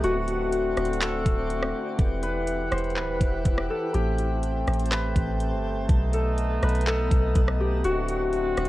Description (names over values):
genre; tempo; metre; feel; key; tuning
hip hop, atmospheric cloud-rap; 123 BPM; 4/4; half-time; E minor; A4 = 442 Hz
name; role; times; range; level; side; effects
Celtic harp; melody; 0.0-8.7 s; F#4 to C5; -29 LUFS; left 2 dB; digital delay
dark brass ensemble; sustained chords; 0.0-8.7 s; D3 to F#5; -30 LUFS; equal; sidechain pumping
soft 808-style bass; bass; 0.0-8.7 s; D1 to B1; -27 LUFS; equal; none
smooth R&B drum kit; drums; 0.0-8.7 s; handclaps, hi-hat, kick drum, rim click; -25 LUFS; equal; none
twinkling granular texture; texture; 0.0-8.7 s; B3 to G5; -38 LUFS; equal; built-in reverb
room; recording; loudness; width
digital ambience; worn, warbling old tape, cassette tape, warbly pitch drift; -23 LUFS; side -16 dB against mid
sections
0.0-8.7 A section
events
none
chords
0.0 D7; 2.0 Emadd9; 3.9 Am7; 5.9 B7; 7.8 D7